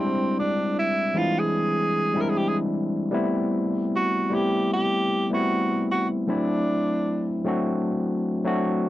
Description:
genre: soul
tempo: 76 BPM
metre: 4/4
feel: swing 54% on 16ths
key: E minor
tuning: A4 = 440 Hz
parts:
  - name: breathy tenor saxophone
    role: melody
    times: 0.0-7.4 s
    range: B#3 to A#4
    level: -25 LUFS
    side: right 1 dB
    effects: none
  - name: overdriven tine electric piano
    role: accompaniment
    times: 0.0-8.9 s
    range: E3 to F#4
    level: -23 LUFS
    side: left 1 dB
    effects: none
room: light reverb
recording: dry, close 1970s-style studio recording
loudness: -22 LUFS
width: side -15 dB against mid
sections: 0.0-8.9 A section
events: none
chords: 0.0 E7alt; 3.1 Am9; 6.3 D7

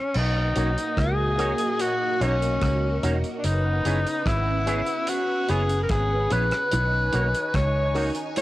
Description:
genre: lovers rock reggae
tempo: 73 BPM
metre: 4/4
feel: straight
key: B major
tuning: A4 = 440 Hz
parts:
  - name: breathy tenor saxophone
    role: melody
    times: 0.0-8.4 s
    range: C#4 to C#5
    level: -25 LUFS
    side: left 1 dB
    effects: cassette tape, tape echo
  - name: damped 70s drum kit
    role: drums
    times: 0.1-8.4 s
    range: crash cymbal, hi-hat, kick drum, rim click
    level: -31 LUFS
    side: right 1 dB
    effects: cassette tape, analog delay
  - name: string machine, full ensemble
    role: second line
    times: 0.2-8.4 s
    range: A#3 to G#5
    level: -32 LUFS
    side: right 1 dB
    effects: phaser, ensemble chorus, cassette tape, analog delay
  - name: vintage muted fingered electric bass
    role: bass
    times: 0.2-8.1 s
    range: E1 to C#2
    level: -25 LUFS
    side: equal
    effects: none
  - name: FM electric piano with soft pad layer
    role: accompaniment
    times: 0.6-8.1 s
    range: C#4 to B4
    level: -35 LUFS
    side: left 2 dB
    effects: chorus, phaser, cassette tape, analog delay, plate reverb
  - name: electric guitar with an envelope filter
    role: stabs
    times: 0.6-8.1 s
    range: A#3 to C#5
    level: -35 LUFS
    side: right 3 dB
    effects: ensemble chorus, cassette tape, analog delay, plate reverb
  - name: bongos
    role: percussion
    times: 6.7-8.4 s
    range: none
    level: -30 LUFS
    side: right 3 dB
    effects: none
room: light reverb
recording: home recording on cassette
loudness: -21 LUFS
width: side -16 dB against mid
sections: 0.1-8.4 A section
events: none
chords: 0.1 Bmaj9; 3.4 F#9sus4; 6.7 Bmaj9

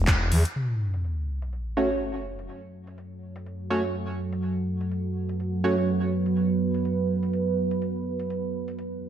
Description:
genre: bass house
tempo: 124 BPM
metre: 4/4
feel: swing 56% on 16ths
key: F# minor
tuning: A4 = 440 Hz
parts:
  - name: big-room dance drum kit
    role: drums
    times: 0.1-8.9 s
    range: handclaps, hi-hat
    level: -30 LUFS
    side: equal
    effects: low-pass filter on hats, low-pass filter on snare
  - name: deep dark ambient pad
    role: sustained chords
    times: 3.1-9.1 s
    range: E3 to C#5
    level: -26 LUFS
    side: right 2 dB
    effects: chorus, built-in reverb, sidechain pumping
  - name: sub drop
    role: sound effects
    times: 0.6-2.5 s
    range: none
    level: -29 LUFS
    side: equal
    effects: none
  - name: band-passed chord stab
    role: stabs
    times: 1.8-5.8 s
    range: A3 to C#5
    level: -27 LUFS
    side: right 2 dB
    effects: chorus, sidechain pumping, diffuse ambient delay
room: wet plate reverb, RT60 1.6 s, digital ambience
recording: dreamy mix soaked in reverb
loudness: -24 LUFS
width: side -9 dB against mid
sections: 0.6-9.1 A section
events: band accent 0.1; impact 0.6-2.5; filter sweep on ambient pad 0.6-9.1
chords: 0.0 N.C.; 0.6 F#m; 8.3 E

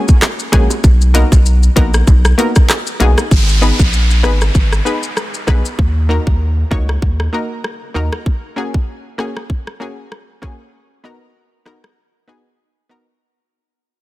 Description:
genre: dancehall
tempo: 97 BPM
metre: 4/4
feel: swing 56% on 16ths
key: unclear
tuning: A4 = 440 Hz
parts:
  - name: analog pluck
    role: accompaniment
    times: 0.0-13.0 s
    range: Ab3 to Db5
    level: -20 LUFS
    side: left 2 dB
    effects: chorus
  - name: island pop drum kit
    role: drums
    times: 0.1-12.0 s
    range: handclaps, hi-hat, kick drum, rim click, shaker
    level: -13 LUFS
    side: equal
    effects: soft clipping on snare
  - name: bongos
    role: percussion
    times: 0.2-3.3 s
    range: none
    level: -28 LUFS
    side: right 4 dB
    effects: none
  - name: saturated sub bass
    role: bass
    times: 0.5-8.1 s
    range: Ab1 to Eb2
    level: -13 LUFS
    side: equal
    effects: none
  - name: downlifter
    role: sound effects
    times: 3.3-8.3 s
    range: none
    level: -23 LUFS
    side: right 1 dB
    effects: none
room: digital ambience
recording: dense, heavily limited modern master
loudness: -11 LUFS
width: side -17 dB against mid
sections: 0.0-3.3 A section; 3.3-13.2 B section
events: fade-out 3.3-13.2; break 12.0-13.2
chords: 0.0 Gbadd9; 0.8 Bmaj7; 3.3 Abm; 5.8 Ebm; 8.3 Gbadd9; 10.7 Bmaj7

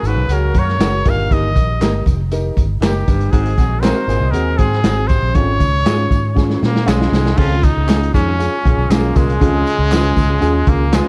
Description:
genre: uptempo 1960s-style soul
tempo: 118 BPM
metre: 4/4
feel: straight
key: unclear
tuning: A4 = 444 Hz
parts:
  - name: bright trumpet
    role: melody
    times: 0.0-11.1 s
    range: G#3 to E#5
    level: -23 LUFS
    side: equal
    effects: none
  - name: clear upright piano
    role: accompaniment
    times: 0.0-11.1 s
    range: G2 to E#5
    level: -25 LUFS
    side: equal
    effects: none
  - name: vintage muted fingered electric bass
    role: bass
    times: 0.0-11.0 s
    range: E#1 to A#2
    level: -20 LUFS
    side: equal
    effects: none
  - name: tambourine and handclaps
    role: percussion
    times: 0.0-11.0 s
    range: none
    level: -36 LUFS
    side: equal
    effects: none
  - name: mellow horn section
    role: second line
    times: 0.1-4.8, 8.4-11.1 s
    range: F#3 to B#4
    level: -30 LUFS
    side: equal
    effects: slapback echo
  - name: clear baritone saxophone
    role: riff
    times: 0.1-9.6 s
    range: D#2 to B#2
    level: -28 LUFS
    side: equal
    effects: none
  - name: crunchy breakbeat drum kit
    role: drums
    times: 0.1-11.0 s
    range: crash cymbal, hi-hat, kick drum, snare drum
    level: -19 LUFS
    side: equal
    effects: none
  - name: clean electric guitar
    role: stabs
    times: 0.8-11.0 s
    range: F#3 to A#4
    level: -29 LUFS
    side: equal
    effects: none
room: light reverb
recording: dark, warm production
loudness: -15 LUFS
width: mono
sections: 0.0-7.4 A section; 7.4-11.1 B section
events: drum fill 6.4-7.4; upright piano fill 6.6-7.4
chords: 0.0 F#add9; 1.1 D#; 3.3 G#7; 5.4 C#/G#; 7.4 C#

